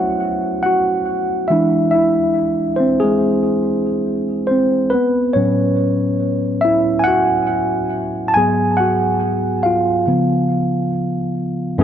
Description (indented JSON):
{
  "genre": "R&B",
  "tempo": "70 BPM",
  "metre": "4/4",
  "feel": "swing 55% on 16ths",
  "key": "unclear",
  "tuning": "A4 = 440 Hz",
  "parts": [
    { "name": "tine electric piano", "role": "solo", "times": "0.0-11.8 s", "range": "F#2 to A5", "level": "-15 LUFS", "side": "equal", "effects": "tape echo" }
  ],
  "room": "moderate plate reverb, RT60 2.6 s",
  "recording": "none",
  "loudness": "-15 LUFS",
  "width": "side -9 dB against mid",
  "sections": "0.0-11.8 A section",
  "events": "tine electric piano solo 0.0-11.8",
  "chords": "0.0 F#m7; 1.5 Eaug7; 4.9 A69; 8.3 G#m7; 10.1 C#7",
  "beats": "0.63 | 1.49 2.35 3.21 4.06 | 4.92 5.78 6.63 7.49 | 8.35 9.21 10.06 10.92 | 11.78"
}